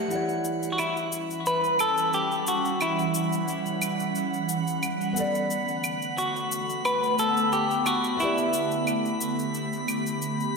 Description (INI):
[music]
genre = sunset chillout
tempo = 89 BPM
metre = 4/4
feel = swing 54% on 16ths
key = E dorian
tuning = A4 = 440 Hz
[part]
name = nylon-string guitar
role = accompaniment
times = 0.0-10.6 s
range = E3 to F#5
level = -32 LUFS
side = left 1 dB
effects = auto-pan, tape echo
[part]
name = drifting glass-harmonics texture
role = texture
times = 0.0-10.6 s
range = F#5 to B5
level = -35 LUFS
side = right 1 dB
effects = chorus, built-in reverb
[part]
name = ethereal airy pad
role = sustained chords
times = 1.2-10.6 s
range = D3 to F#5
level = -29 LUFS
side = right 1 dB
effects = ensemble chorus, built-in reverb, phaser, vintage 12-bit sampler grit
[part]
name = cabasa and claves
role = drums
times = 0.1-10.5 s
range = none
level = -34 LUFS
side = left 1 dB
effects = none
[part]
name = semi-hollow electric guitar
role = melody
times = 0.7-10.5 s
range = E4 to B4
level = -26 LUFS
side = left 1 dB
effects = spring reverb, ping-pong delay
[sound]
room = wet lush hall reverb, RT60 2.2 s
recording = dreamy mix soaked in reverb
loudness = -24 LUFS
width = side -4 dB against mid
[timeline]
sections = 0.1-10.6 A section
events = none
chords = 0.1 Em69; 5.2 Bm7; 8.2 A9sus4